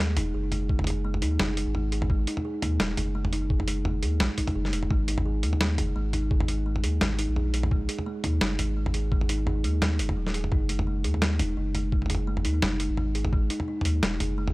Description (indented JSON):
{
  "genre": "half-time drum and bass",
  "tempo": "171 BPM",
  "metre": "4/4",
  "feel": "swing 55% on 16ths, half-time",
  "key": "unclear",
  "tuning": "A4 = 440 Hz",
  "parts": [
    { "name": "kalimba", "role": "arpeggios", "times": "0.0-14.5 s", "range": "F#3 to G#4", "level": "-32 LUFS", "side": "right 1 dB", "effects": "analog delay" },
    { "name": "saturated sub bass", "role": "bass", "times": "0.0-14.5 s", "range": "D#1 to D#2", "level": "-27 LUFS", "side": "equal", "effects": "none" },
    { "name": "boom bap sampler-style drum kit", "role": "drums", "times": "0.2-14.5 s", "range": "hi-hat, snare drum, toms", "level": "-29 LUFS", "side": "equal", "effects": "none" },
    { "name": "electronic kick drum", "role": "drums", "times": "0.7-13.4 s", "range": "none", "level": "-26 LUFS", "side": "equal", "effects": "none" }
  ],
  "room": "digital ambience",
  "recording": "dry, gritty hardware recording",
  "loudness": "-24 LUFS",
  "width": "side -21 dB against mid",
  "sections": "0.0-14.5 A section",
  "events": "none",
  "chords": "0.0 N.C.; 4.9 G#5; 10.5 N.C.",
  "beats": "0.34 | 0.69 1.05 1.40 1.75 | 2.10 2.45 2.80 3.15 | 3.50 3.85 4.20 4.55 | 4.91 5.26 5.61 5.96 | 6.31 6.66 7.01 7.36 | 7.71 8.06 8.41 8.77 | 9.12 9.47 9.82 10.17 | 10.52 10.87 11.22 11.57 | 11.92 12.27 12.62 12.97 | 13.33 13.68 14.03 14.38"
}